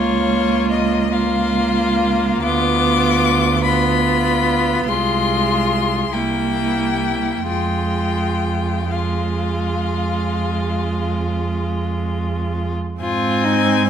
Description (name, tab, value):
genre	classical, slow romantic movement for string quartet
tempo	42-51 BPM (dotted quarters)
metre	12/8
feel	rubato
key	F minor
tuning	A4 = 439 Hz
part	rich violin	melody	0.0-13.9 s	Db5 to D6	-22 LUFS	left 9 dB	none
part	clear violin	second line	0.0-13.9 s	Eb4 to F4	-23 LUFS	left 3 dB	none
part	clear viola	accompaniment	0.0-13.9 s	Ab3 to C4	-22 LUFS	right 3 dB	none
part	rich cello	bass	0.0-13.9 s	C2 to Ab2	-22 LUFS	right 4 dB	none
room	wet recital hall reverb, RT60 1.6 s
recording	none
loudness	-16 LUFS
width	side -8 dB against mid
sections	0.0-13.0 A section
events	none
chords	0.0 Bbm/Db; 2.4 Dm6; 4.9 Fm/C; 6.1 C7; 7.5 Fm; 13.0 Ab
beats	1.12 | 2.43 3.64 4.87 6.14 | 7.48 8.89 10.29 11.63 | 13.00